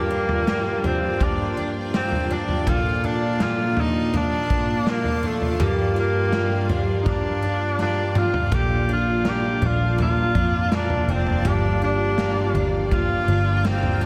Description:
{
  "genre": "dream pop",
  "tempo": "82 BPM",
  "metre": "4/4",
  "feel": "straight",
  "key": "unclear",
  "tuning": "A4 = 440 Hz",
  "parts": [
    { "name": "clear tenor saxophone", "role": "melody", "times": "0.0-14.1 s", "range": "A3 to G4", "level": "-28 LUFS", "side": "equal", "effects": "digital delay, shimmer reverb" },
    { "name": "granular cloud pad", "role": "sustained chords", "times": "0.0-14.1 s", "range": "F4 to A5", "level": "-32 LUFS", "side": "equal", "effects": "built-in reverb, shimmer reverb" },
    { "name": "picked twelve-string acoustic guitar", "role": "arpeggios", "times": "0.0-14.1 s", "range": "G2 to A4", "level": "-27 LUFS", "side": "equal", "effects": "lush chorus, digital delay, shimmer reverb" },
    { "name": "raw garage drum kit", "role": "drums", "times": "0.3-14.0 s", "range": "kick drum, snare drum, toms", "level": "-28 LUFS", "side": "equal", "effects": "none" },
    { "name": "vintage muted picked electric bass", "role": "bass", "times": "8.5-14.1 s", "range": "F1 to F2", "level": "-27 LUFS", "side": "equal", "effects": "none" }
  ],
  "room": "moderate huge ambient reverb, RT60 8.5 s",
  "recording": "none",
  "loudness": "-22 LUFS",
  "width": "mono",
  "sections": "0.0-14.1 A section",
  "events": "drum fill 7.8-8.5",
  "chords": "0.0 Gm7; 2.7 Bbmaj7; 5.6 Gm7; 8.5 Bbmaj7; 11.5 Gm7",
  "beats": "0.48 1.21 1.94 | 2.67 3.40 4.13 4.87 | 5.60 6.33 7.06 7.79 | 8.52 9.26 9.99 10.72 | 11.45 12.18 12.91 13.65"
}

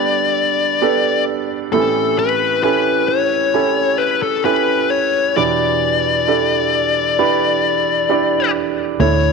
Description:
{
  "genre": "pop ballad",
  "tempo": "66 BPM",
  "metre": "4/4",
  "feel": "straight",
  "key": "unclear",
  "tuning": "A4 = 441 Hz",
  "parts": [
    { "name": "fuzz lead guitar", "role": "melody", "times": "0.0-9.3 s", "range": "A4 to D5", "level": "-16 LUFS", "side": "left 8 dB", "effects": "distortion" },
    { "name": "clear grand piano", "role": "accompaniment", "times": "0.0-9.3 s", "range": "E2 to D5", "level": "-18 LUFS", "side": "right 11 dB", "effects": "none" },
    { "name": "vintage muted fingered electric bass", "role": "bass", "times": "9.0-9.3 s", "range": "D2", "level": "-15 LUFS", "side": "equal", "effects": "none" }
  ],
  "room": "moderate echo chamber reverb, RT60 2.4 s",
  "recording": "1960s-style stereo with parts hard left and right",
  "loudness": "-14 LUFS",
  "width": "side -4 dB against mid",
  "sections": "0.0-9.0 A section",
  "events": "none",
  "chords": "0.0 Gadd9; 1.7 A7; 5.4 Em7",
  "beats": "0.82 | 1.73 2.63 3.54 4.45 | 5.36 6.27 7.18 8.09 | 9.00"
}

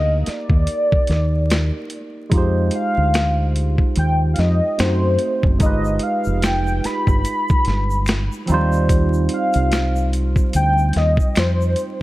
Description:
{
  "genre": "R&B, neo-soul",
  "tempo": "73 BPM",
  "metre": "4/4",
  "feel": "swing 58% on 16ths",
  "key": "Eb major",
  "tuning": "A4 = 440 Hz",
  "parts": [
    { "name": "warm velvety synth lead", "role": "melody", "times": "0.0-12.0 s", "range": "C5 to B5", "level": "-22 LUFS", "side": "left 1 dB", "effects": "chorus" },
    { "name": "barky tine electric piano", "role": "accompaniment", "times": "0.0-12.0 s", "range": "F3 to C5", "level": "-24 LUFS", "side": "right 3 dB", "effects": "overdrive, phaser" },
    { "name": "deep dub fingered electric bass", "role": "bass", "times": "0.0-11.7 s", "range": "F1 to F#2", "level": "-18 LUFS", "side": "equal", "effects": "none" },
    { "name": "boom bap sampler-style drum kit", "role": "drums", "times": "0.3-12.0 s", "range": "finger snaps, hi-hat, kick drum, snare drum", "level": "-20 LUFS", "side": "equal", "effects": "none" },
    { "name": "egg shaker and finger snaps", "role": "percussion", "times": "5.6-12.0 s", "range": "none", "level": "-38 LUFS", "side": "left 4 dB", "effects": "none" }
  ],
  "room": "light reverb, small room ambience",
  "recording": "dark, warm production, vinyl crackle",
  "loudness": "-16 LUFS",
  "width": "side -17 dB against mid",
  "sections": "0.0-12.0 A section",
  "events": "none",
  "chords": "0.0 Ebmaj7; 2.3 Fm9; 4.8 F#dim7; 5.6 G7b9b13; 8.5 Eb69",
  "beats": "0.68 1.50 | 2.32 3.14 3.96 4.79 | 5.61 6.43 7.25 8.07 | 8.89 9.72 10.54 11.36"
}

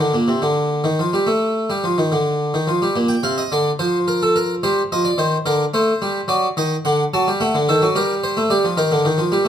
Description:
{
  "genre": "classical, baroque-style two-part invention for harpsichord",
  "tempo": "72 BPM (dotted quarters)",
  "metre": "12/8",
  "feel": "straight",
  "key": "G minor",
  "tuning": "A4 = 443 Hz",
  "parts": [
    { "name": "harpsichord", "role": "solo", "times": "0.0-9.5 s", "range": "Bb2 to A5", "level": "-16 LUFS", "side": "equal", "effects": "none" }
  ],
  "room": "light reverb",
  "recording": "none",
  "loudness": "-16 LUFS",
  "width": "side -9 dB against mid",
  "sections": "0.0-3.0 A section; 3.0-9.5 B section",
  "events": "none",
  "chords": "0.0 Gm/Bb; 4.6 Cm; 6.3 D; 7.9 Gm",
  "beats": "0.42 1.27 2.12 | 2.96 3.80 4.63 5.46 | 6.29 7.12 7.95 8.77"
}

